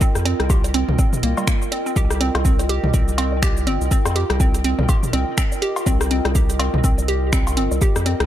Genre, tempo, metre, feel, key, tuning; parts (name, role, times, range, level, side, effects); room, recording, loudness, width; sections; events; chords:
minimal techno; 123 BPM; 4/4; swing 59% on 16ths; C minor; A4 = 439 Hz
hollow square pluck; riff; 0.0-8.1 s; G3 to G4; -25 LUFS; right 1 dB; chorus, sidechain pumping, tape echo
electronic kick drum; drums; 0.0-7.9 s; -18 LUFS; equal
punchy analog drum machine; drums; 0.0-8.3 s; finger snaps, hi-hat, shaker; -27 LUFS; right 2 dB; overdrive, dub echo
warbly tape-like pad; texture; 0.0-8.3 s; F4 to G5; -27 LUFS; right 1 dB; chorus, built-in reverb, phaser, sidechain pumping
round analog bass; bass; 0.2-8.3 s; G1 to F2; -22 LUFS; equal; sidechain pumping
techno drum kit; percussion; 0.2-8.3 s; cowbell, rim click, toms, woodblock; -26 LUFS; left 2 dB; analog delay
little or no reverb; echo-heavy mix; -16 LUFS; side -12 dB against mid
0.0-8.3 A section
0.0 Cm7